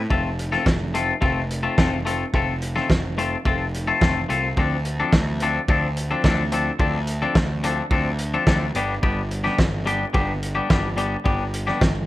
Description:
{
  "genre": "indie rock",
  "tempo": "108 BPM",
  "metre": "4/4",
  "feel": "straight",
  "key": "unclear",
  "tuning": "A4 = 440 Hz",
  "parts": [
    { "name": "fuzz picked electric bass", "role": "bass", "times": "0.0-12.1 s", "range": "F1 to D2", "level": "-26 LUFS", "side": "equal", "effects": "overdrive" },
    { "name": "twangy electric guitar", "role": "riff", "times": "0.1-11.9 s", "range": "F3 to A4", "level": "-24 LUFS", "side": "left 3 dB", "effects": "none" },
    { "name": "loose indie drum kit", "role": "drums", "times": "0.1-11.9 s", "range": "hi-hat, kick drum, snare drum", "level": "-22 LUFS", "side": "equal", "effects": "none" }
  ],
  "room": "light reverb, small room ambience",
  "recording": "rough home demo mix, vinyl crackle",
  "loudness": "-19 LUFS",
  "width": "side -16 dB against mid",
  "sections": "0.0-12.1 A section",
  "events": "none",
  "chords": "0.1 F; 4.6 Dm7; 8.8 G"
}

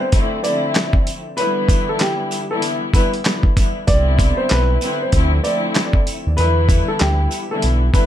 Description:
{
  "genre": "hip hop, boom-bap hip-hop",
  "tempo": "96 BPM",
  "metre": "4/4",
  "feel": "swing 62% on 16ths",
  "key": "unclear",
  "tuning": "A4 = 440 Hz",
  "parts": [
    { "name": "warm upright piano", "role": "melody", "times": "0.0-8.1 s", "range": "G4 to D5", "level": "-22 LUFS", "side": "equal", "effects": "high-pass filter, low-pass filter, tape echo" },
    { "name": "dark chamber string section", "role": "accompaniment", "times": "0.0-8.1 s", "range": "D3 to E4", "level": "-22 LUFS", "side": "left 2 dB", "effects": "high-pass filter, low-pass filter" },
    { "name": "dusty soul sampler-style drum kit", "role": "drums", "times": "0.1-8.1 s", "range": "handclaps, hi-hat, kick drum, snare drum", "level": "-17 LUFS", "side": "equal", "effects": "none" },
    { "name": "sleigh bells", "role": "percussion", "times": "0.1-8.1 s", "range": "none", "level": "-34 LUFS", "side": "right 4 dB", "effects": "none" },
    { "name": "sub bass with octave", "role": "bass", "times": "3.9-7.9 s", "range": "B1 to E2", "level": "-16 LUFS", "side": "equal", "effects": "none" }
  ],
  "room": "light reverb",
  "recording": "none",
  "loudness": "-15 LUFS",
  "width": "side -11 dB against mid",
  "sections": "0.0-8.1 A section",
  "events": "break 0.0-3.9",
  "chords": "0.1 Dm9; 1.4 Em7; 3.9 Cmaj9; 5.1 Dm9; 6.4 Em7"
}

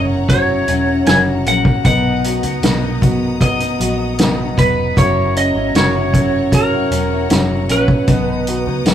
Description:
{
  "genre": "pop ballad",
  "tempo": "77 BPM",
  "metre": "4/4",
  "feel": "straight",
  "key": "B major",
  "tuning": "A4 = 439 Hz",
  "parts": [
    { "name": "clear grand piano", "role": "accompaniment", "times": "0.0-8.9 s", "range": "F#3 to B4", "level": "-21 LUFS", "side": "right 2 dB", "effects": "none" },
    { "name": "clear studio string section", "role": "sustained chords", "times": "0.0-8.9 s", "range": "B3 to D#6", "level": "-28 LUFS", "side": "equal", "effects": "none" },
    { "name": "picked steel-string acoustic guitar", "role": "arpeggios", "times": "0.0-8.9 s", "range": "B2 to A#4", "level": "-22 LUFS", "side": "left 6 dB", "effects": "none" },
    { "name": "vintage muted fingered electric bass", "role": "bass", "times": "0.0-8.9 s", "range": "E1 to C#2", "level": "-22 LUFS", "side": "right 1 dB", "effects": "none" },
    { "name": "lightly driven lead guitar", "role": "melody", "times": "0.3-8.9 s", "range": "A#4 to G#5", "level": "-19 LUFS", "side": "right 1 dB", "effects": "none" },
    { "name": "soft-mallet drum kit", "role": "drums", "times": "0.3-8.9 s", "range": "hi-hat, kick drum, snare drum", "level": "-16 LUFS", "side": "equal", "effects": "none" }
  ],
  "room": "moderate studio reverb, RT60 0.5 s",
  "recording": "rough rehearsal-room recording",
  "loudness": "-13 LUFS",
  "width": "side -10 dB against mid",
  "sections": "0.0-8.9 A section",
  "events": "none",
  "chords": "0.0 F#7; 1.8 Bmaj7; 5.0 F#7; 8.1 Bmaj7"
}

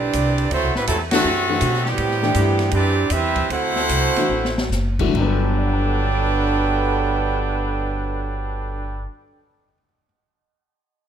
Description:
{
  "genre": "jazz, big band swing",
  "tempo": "138-162 BPM",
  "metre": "4/4",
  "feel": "swing 66% on 8ths",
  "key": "G major",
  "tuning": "A4 = 439 Hz",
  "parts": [
    { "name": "clear trumpet section", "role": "melody", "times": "0.0-9.1 s", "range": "F#3 to G5", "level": "-22 LUFS", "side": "right 2 dB", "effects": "none" },
    { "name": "mellow trombone section", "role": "second line", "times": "0.0-9.1 s", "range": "G2 to G4", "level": "-25 LUFS", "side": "right 4 dB", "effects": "none" },
    { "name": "upright bass", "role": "bass", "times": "0.0-9.0 s", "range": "F#1 to B2", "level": "-23 LUFS", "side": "equal", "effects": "none" },
    { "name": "open jazz drum kit", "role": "drums", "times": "0.1-5.3 s", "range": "crash cymbal, hi-hat, kick drum, ride cymbal, snare drum", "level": "-28 LUFS", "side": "equal", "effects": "none" },
    { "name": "warm baby grand piano", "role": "accompaniment", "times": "1.1-10.1 s", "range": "G2 to D7", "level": "-25 LUFS", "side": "left 5 dB", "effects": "none" }
  ],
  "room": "light reverb",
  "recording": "minimal, uncompressed stereo recording",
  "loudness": "-18 LUFS",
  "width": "side -9 dB against mid",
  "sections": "0.0-5.1 A section; 5.1-8.6 B section",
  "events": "band accent 1.1; slowing down 2.0-5.1; drum fill 4.3-4.7",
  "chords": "0.0 Am11 (rootless); 0.5 D9; 2.0 Am11; 3.5 D9; 5.1 Gmaj9"
}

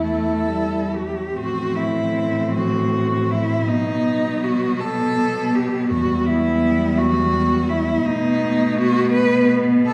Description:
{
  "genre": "classical, lyrical piece for cello ensemble",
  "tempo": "43-57 BPM (dotted quarters)",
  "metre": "6/8",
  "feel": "rubato",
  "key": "E minor",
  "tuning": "A4 = 439 Hz",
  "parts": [
    { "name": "rich cello", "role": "melody", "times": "0.0-9.9 s", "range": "D#4 to B4", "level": "-24 LUFS", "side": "equal", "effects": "none" },
    { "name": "rich cello", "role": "second line", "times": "0.0-9.9 s", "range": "B3 to E4", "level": "-25 LUFS", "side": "equal", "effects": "none" },
    { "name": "rich cello", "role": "accompaniment", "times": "0.0-9.9 s", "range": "E3 to A3", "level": "-29 LUFS", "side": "equal", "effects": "none" },
    { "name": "rich cello", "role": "bass", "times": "0.0-9.9 s", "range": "E2 to B2", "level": "-26 LUFS", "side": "equal", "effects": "none" }
  ],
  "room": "wet recital hall reverb, RT60 1.6 s",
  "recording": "heard from further back in the room",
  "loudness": "-20 LUFS",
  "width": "mono",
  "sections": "0.0-1.3 A section; 1.3-9.9 B section",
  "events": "none",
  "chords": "0.0 Em; 1.3 Am; 3.7 B; 5.9 Em; 8.1 B7"
}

